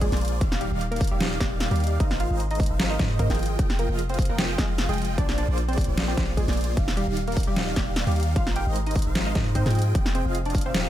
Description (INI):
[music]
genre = future bass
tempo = 151 BPM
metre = 4/4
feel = swing 54% on 16ths, half-time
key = F dorian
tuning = A4 = 440 Hz
[part]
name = wide unison pluck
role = melody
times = 0.0-10.9 s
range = G3 to G5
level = -32 LUFS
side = right 1 dB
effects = sidechain pumping, tape echo
[part]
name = airy dreamy lead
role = arpeggios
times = 0.0-10.9 s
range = D5 to G5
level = -36 LUFS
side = equal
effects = chorus, sidechain pumping, tape echo
[part]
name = supersaw chords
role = riff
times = 0.0-10.9 s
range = Eb3 to G5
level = -32 LUFS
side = right 1 dB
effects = phaser, sidechain pumping
[part]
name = long sustained 808-style bass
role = bass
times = 0.0-10.9 s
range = Eb1 to Ab2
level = -26 LUFS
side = equal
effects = sidechain pumping
[part]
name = dubstep drum kit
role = drums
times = 0.0-10.8 s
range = hi-hat, snare drum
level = -29 LUFS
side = equal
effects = overdrive
[part]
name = electronic kick drum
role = drums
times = 0.0-10.6 s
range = none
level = -26 LUFS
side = equal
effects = overdrive
[sound]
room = digital ambience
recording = none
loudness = -22 LUFS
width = side -12 dB against mid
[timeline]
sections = 0.0-10.9 A section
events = none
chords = 0.4 Ebmaj7; 2.0 Ab6; 3.4 Fm7; 5.2 Bb7; 6.8 Ebmaj7; 8.4 Ab6; 9.8 Fm7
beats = 0.01 | 0.41 0.81 1.21 1.60 | 2.00 2.40 2.80 3.19 | 3.59 3.99 4.39 4.78 | 5.18 5.58 5.98 6.37 | 6.77 7.17 7.57 7.96 | 8.36 8.76 9.15 9.55 | 9.95 10.35 10.74